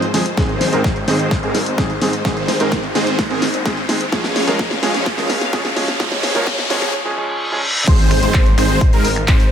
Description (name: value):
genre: EDM, festival progressive house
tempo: 128 BPM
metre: 4/4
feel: straight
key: Ab major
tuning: A4 = 440 Hz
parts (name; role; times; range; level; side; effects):
- warm grand piano; accompaniment; 0.0-7.6 s; Ab2 to Bb4; -22 LUFS; right 2 dB; sidechain pumping, tape echo
- rich symphonic string section; sustained chords; 0.0-9.5 s; Ab3 to F5; -27 LUFS; left 2 dB; none
- supersaw chords; riff; 0.0-9.4 s; Eb3 to Db5; -21 LUFS; right 1 dB; phaser, sidechain pumping, low-pass filter, tape echo
- wide detuned saw bass; bass; 0.0-9.4 s; Ab1 to Db2; -26 LUFS; equal; none
- big-room dance drum kit; drums; 0.0-9.5 s; crash cymbal, finger snaps, handclaps, hi-hat, snare drum; -22 LUFS; left 1 dB; studio ambience
- riser, reverse cymbal and impact; sound effects; 0.0-9.5 s; none; -23 LUFS; equal; none
- electronic kick drum; drums; 0.4-9.4 s; none; -16 LUFS; equal; studio ambience
- wide unison lead; arpeggios; 7.9-9.4 s; Bb4 to C5; -21 LUFS; equal; ensemble chorus, sidechain pumping, tape echo
room: moderate lush hall reverb, RT60 1.8 s, digital ambience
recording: high-pass filter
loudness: -14 LUFS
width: side -8 dB against mid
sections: 0.0-7.9 A section; 7.9-9.5 B section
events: build-up 0.0-7.9; drum fill 0.0-6.9; riser 0.0-6.9; filter sweep 0.0-7.9; reverse cymbal 6.9-7.9; drop 7.9-9.5; impact 7.9-9.5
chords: 0.4 Ab; 4.1 Db; 7.9 Ab